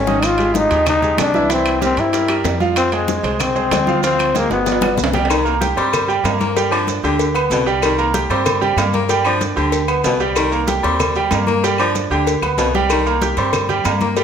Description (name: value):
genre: latin, salsa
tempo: 190 BPM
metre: 4/4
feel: straight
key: C minor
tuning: A4 = 440 Hz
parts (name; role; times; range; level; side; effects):
- growling trombone; melody; 0.0-5.1 s; Ab3 to F4; -17 LUFS; left 3 dB; tape echo
- upright bass; bass; 0.0-14.2 s; G1 to G2; -24 LUFS; equal; none
- bright baby grand piano; accompaniment; 0.1-14.2 s; Eb3 to G6; -20 LUFS; right 5 dB; none
- bongos and cowbell; percussion; 0.1-14.2 s; none; -25 LUFS; left 5 dB; none
- congas; percussion; 0.1-14.2 s; none; -27 LUFS; left 2 dB; none
- maracas; percussion; 0.1-14.2 s; none; -32 LUFS; right 9 dB; none
- claves; percussion; 0.2-14.0 s; none; -31 LUFS; left 7 dB; none
- timbales and agogo bells; percussion; 0.2-14.2 s; none; -24 LUFS; right 4 dB; none
- bright baritone saxophone; second line; 5.3-14.2 s; B2 to Bb3; -22 LUFS; left 4 dB; none
room: wet large studio reverb, RT60 1.2 s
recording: none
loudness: -14 LUFS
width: side -8 dB against mid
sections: 0.0-5.3 A section; 5.3-14.2 B section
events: drum fill 0.0, 4.5-5.3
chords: 0.2 Abmaj7#11; 1.5 C7; 2.8 Fm; 4.0 Dm7b5; 4.7 G; 5.3 C7(no3); 6.6 G; 7.8 C7(no3); 9.1 G; 10.4 Cm7; 11.6 G; 12.9 C7(no3)